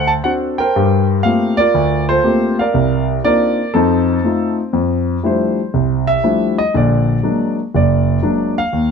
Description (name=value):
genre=solo jazz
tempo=120 BPM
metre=4/4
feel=swing 66% on 8ths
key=F major from 4.7 s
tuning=A4 = 440 Hz
part: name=warm concert grand piano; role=solo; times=0.0-8.9 s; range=F#1 to A5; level=-13 LUFS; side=equal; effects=none
room=moderate studio reverb, RT60 0.8 s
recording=dark, warm production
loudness=-13 LUFS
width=side -6 dB against mid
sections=0.0-4.7 A section; 4.7-8.9 B section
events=grand piano solo 4.7-8.9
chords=0.0 D7; 0.7 Gm11; 2.7 Cm11; 3.7 F7; 4.7 Fmaj13; 6.7 Bbaug7